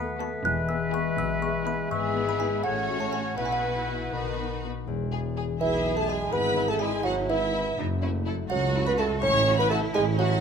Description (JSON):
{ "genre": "cinematic, playful, whimsical film cue", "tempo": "82 BPM (dotted quarters)", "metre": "6/8", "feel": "straight", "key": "E major", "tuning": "A4 = 435 Hz", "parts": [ { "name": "music box", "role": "melody", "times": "0.0-10.4 s", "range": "E5 to F#6", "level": "-33 LUFS", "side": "right 3 dB", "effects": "none" }, { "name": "bright clarinet", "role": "second line", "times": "0.0-4.6 s", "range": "B4 to C#5", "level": "-38 LUFS", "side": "left 2 dB", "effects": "none" }, { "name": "clear oboe", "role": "second line", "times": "0.0-4.5 s", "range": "B4 to E5", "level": "-34 LUFS", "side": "right 1 dB", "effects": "none" }, { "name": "mellow silver concert flute", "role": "second line", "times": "0.0-4.6 s", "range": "E5 to F#5", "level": "-37 LUFS", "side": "left 4 dB", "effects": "none" }, { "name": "dark bassoon", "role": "accompaniment", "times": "0.0-10.4 s", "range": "D#3 to C#4", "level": "-29 LUFS", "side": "right 2 dB", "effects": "none" }, { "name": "mellow French horn section", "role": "sustained chords", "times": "0.0-4.7 s", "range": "B3 to A4", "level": "-40 LUFS", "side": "left 5 dB", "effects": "none" }, { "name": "concert harp", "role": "arpeggios", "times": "0.0-10.4 s", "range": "E2 to C#5", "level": "-32 LUFS", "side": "left 12 dB", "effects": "none" }, { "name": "rich studio cello section", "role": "bass", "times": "0.0-10.4 s", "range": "D#2 to A4", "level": "-36 LUFS", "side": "right 3 dB", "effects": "none" }, { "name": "rich studio double bass section", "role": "bass", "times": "0.0-10.4 s", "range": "E1 to D#2", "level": "-33 LUFS", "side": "right 3 dB", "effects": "none" }, { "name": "rich studio violin section", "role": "melody", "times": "0.2-10.3 s", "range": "E4 to C#5", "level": "-37 LUFS", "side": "left 5 dB", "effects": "none" }, { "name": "rich studio violin section", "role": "second line", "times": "0.2-10.4 s", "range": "E4 to C#6", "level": "-35 LUFS", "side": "left 1 dB", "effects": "none" }, { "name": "rich studio viola section", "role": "accompaniment", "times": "0.2-10.4 s", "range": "B3 to C#5", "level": "-34 LUFS", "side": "left 1 dB", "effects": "none" }, { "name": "mellow tuba", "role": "bass", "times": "4.9-10.4 s", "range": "E1 to C#2", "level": "-33 LUFS", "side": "right 5 dB", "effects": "none" } ], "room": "moderate scoring stage reverb, RT60 1.7 s", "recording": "close, detailed microphones", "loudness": "-24 LUFS", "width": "side -6 dB against mid", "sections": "0.0-4.9 A section; 4.9-10.4 B section", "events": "none", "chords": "0.4 E; 1.9 E/G#; 2.6 F#m/A; 3.4 Bsus4; 4.1 B; 4.9 E; 6.3 E/G#; 7.8 F#m7; 9.2 F#m/A" }